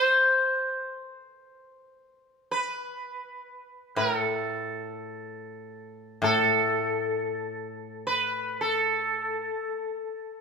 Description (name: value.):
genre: japanese traditional, Japanese chamber music.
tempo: free time.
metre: none.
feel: none.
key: unclear.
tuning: A4 = 440 Hz.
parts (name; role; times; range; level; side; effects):
sitar; melody; 0.0-10.4 s; A4 to C5; -26 LUFS; equal; none.
koto; accompaniment; 4.0-9.5 s; A2; -33 LUFS; left 2 dB; none.
room: moderate recital hall reverb, RT60 1.5 s.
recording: minimal, uncompressed stereo recording.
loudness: -25 LUFS.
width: side -5 dB against mid.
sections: 0.0-10.4 A section.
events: none.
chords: none.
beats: free time.